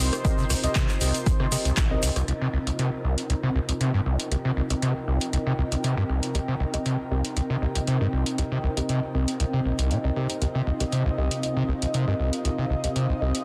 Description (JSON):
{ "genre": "acid house", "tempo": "118 BPM", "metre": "4/4", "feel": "straight", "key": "C minor", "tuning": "A4 = 441 Hz", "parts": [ { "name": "lush unison pad", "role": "sustained chords", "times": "0.0-13.4 s", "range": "C3 to Eb5", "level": "-35 LUFS", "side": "equal", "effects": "chorus, sidechain pumping" }, { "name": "overdriven acid bass", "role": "riff", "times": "0.0-13.3 s", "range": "Bb1 to C3", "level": "-28 LUFS", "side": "equal", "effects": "distortion, lush chorus, cassette tape, sidechain pumping, digital delay" }, { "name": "deep mellow chord stab", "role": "stabs", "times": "0.0-13.4 s", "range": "C4 to Eb5", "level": "-37 LUFS", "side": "equal", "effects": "chorus, digital delay" }, { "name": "granular cloud pad", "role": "texture", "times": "0.0-13.4 s", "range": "C4 to Bb5", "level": "-37 LUFS", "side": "equal", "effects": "built-in reverb, sidechain pumping" }, { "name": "electro analog drum machine", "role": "drums", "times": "0.1-13.4 s", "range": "handclaps, hi-hat, rim click", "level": "-33 LUFS", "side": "equal", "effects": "none" }, { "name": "egg shaker", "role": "percussion", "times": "0.1-2.3 s", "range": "none", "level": "-36 LUFS", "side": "equal", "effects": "none" }, { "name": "electronic kick drum", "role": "drums", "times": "0.2-1.9 s", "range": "none", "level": "-27 LUFS", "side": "equal", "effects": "overdrive" } ], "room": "light reverb, digital ambience", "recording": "dense, heavily limited modern master", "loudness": "-25 LUFS", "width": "mono", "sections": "0.0-2.3 A section; 2.3-13.4 B section", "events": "drop 0.0-2.3", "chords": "0.0 Cm7", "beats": "| 0.25 0.76 1.26 1.77 | 2.28 2.79 3.30 3.81 | 4.32 4.82 5.33 5.84 | 6.35 6.86 7.37 7.87 | 8.38 8.89 9.40 9.91 | 10.42 10.93 11.43 11.94 | 12.45 12.96" }